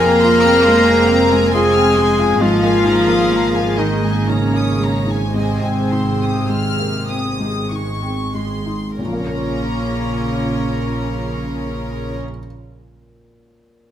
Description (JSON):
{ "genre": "cinematic", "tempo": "46-69 BPM", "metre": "3/4", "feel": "rubato", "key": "Bb minor", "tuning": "A4 = 440 Hz", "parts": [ { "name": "warm symphonic violin section", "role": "melody", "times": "0.0-12.2 s", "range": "C5 to Bb5", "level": "-26 LUFS", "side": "left 4 dB", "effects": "none" }, { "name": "warm clarinet", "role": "second line", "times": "0.0-12.2 s", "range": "Bb3 to Bb4", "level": "-18 LUFS", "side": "left 2 dB", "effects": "none" }, { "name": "warm symphonic violin section", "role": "second line", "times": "0.0-12.2 s", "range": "Bb4 to F6", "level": "-26 LUFS", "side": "left 2 dB", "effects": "none" }, { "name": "felt-muted upright piano", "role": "accompaniment", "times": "0.0-13.9 s", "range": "F2 to Bb4", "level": "-22 LUFS", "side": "left 1 dB", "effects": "none" }, { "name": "warm studio viola section", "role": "accompaniment", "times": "0.0-12.2 s", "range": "Ab3 to Ab4", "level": "-24 LUFS", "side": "right 4 dB", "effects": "none" }, { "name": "rich symphonic cello section", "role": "bass", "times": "0.0-12.2 s", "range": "C3 to Bb3", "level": "-22 LUFS", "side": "right 2 dB", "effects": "none" }, { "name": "warm symphonic double bass section", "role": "bass", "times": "0.0-12.2 s", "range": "F1 to Bb1", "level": "-23 LUFS", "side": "right 2 dB", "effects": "none" }, { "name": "timpani", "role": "percussion", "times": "9.0-12.2 s", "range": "none", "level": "barely audible", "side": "none", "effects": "none" } ], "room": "wet recital hall reverb, RT60 1.4 s", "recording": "close, detailed microphones", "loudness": "-14 LUFS", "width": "side -10 dB against mid", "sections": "0.0-9.0 A section; 9.0-12.8 B section", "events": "slowing down 1.1-9.0", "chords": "0.0 Fm; 2.4 Absus2; 5.3 Ab; 9.0 Bbm" }